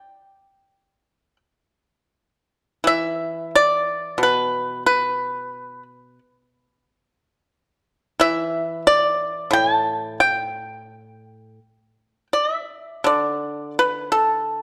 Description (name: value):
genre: chinese traditional, Chinese solo plucked strings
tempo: 79-92 BPM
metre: 4/4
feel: rubato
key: G gong mode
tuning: A4 = 440 Hz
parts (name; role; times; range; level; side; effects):
- pipa; solo; 0.0-14.6 s; A2 to A5; -21 LUFS; equal; none
room: light reverb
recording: dark, warm production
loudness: -21 LUFS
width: mono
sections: 0.0-2.1 A section; 2.1-13.1 B section; 13.1-14.6 A section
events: none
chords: none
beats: 0.67 1.40 | 2.14 2.84 3.53 4.19 | 4.85 5.52 6.19 6.86 | 7.53 8.19 8.85 9.52 | 10.21 10.90 11.59 12.31 | 13.05 13.77 14.47